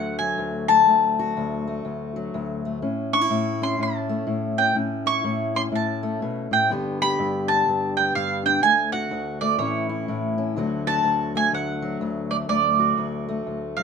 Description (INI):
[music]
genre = acoustic country blues, solo or duo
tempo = 124 BPM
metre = 4/4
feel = swing 62% on 8ths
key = D major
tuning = A4 = 440 Hz
[part]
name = mandolin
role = melody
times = 0.0-13.8 s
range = C#5 to C#6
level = -21 LUFS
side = equal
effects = none
[part]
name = fingerpicked steel-string acoustic guitar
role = accompaniment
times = 0.0-13.8 s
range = D2 to G4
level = -25 LUFS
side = left 2 dB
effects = none
[sound]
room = light reverb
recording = minimal, uncompressed stereo recording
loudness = -21 LUFS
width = side -6 dB against mid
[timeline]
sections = 0.0-10.6 A section; 10.6-13.8 A section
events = none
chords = 0.0 D; 2.8 A; 6.7 G; 8.6 D; 9.6 A; 10.6 D